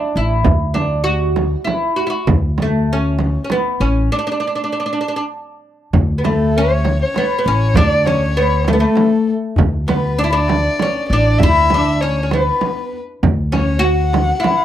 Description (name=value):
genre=Persian modal ensemble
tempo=66 BPM (dotted quarters)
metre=6/8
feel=straight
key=D dastgah mahur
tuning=A4 = 441 Hz
part: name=oud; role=melody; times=0.0-14.6 s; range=A3 to F#4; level=-17 LUFS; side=equal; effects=none
part: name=upright bass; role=bass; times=0.2-14.3 s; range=A1 to D2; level=-17 LUFS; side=equal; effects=none
part: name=tombak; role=percussion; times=0.2-14.6 s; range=none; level=-22 LUFS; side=left 1 dB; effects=none
part: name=frame drum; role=percussion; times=0.4-14.6 s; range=none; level=-20 LUFS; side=right 6 dB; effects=none
part: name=dark violin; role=second line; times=6.2-14.6 s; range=A4 to F#5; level=-21 LUFS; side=left 3 dB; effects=none
room=light reverb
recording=dry, close 1970s-style studio recording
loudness=-14 LUFS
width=side -11 dB against mid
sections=0.0-5.9 A section; 5.9-14.6 A section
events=break 4.1-5.9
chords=none